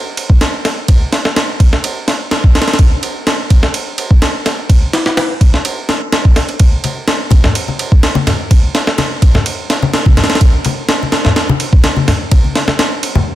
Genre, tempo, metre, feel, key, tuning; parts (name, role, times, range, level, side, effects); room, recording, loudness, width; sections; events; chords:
breakbeat; 126 BPM; 4/4; straight
breakbeat sampler-style drum kit; drums; 0.2-13.1 s; kick drum, ride cymbal, snare drum; -10 LUFS; equal; small room ambience
congas; percussion; 6.8-13.2 s; -16 LUFS; left 2 dB
light reverb; dense, heavily limited modern master; -10 LUFS; side -14 dB against mid
0.0-13.3 A section